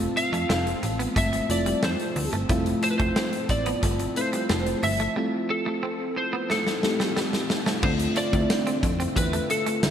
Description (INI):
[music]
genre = 1980s-style pop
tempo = 90 BPM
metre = 4/4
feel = straight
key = unclear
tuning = A4 = 437 Hz
[part]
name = FM electric piano with soft pad layer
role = accompaniment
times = 0.0-9.9 s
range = Ab3 to G4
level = -28 LUFS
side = left 1 dB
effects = chorus
[part]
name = chorused pulse-width pad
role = sustained chords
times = 0.0-9.9 s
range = D3 to E6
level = -35 LUFS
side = right 1 dB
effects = none
[part]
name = slap-like FM bass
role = bass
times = 0.0-9.9 s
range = F1 to F2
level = -29 LUFS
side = equal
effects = none
[part]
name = big rock drum kit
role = drums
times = 0.0-9.9 s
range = crash cymbal, hi-hat, kick drum, snare drum, tambourine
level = -28 LUFS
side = equal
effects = none
[part]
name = lightly driven lead guitar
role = melody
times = 0.2-9.9 s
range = A4 to F5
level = -28 LUFS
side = equal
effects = analog chorus
[part]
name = clean electric guitar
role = riff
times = 0.2-9.8 s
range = G3 to C4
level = -33 LUFS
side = right 4 dB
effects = lush chorus
[sound]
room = wet lush hall reverb, RT60 1.9 s, small room ambience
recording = bright 1980s-style digital production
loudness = -22 LUFS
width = side -9 dB against mid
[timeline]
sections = 0.0-7.8 A section; 7.8-9.9 B section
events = drum fill 6.5-7.8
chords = 0.0 Fmaj7; 7.8 Dm7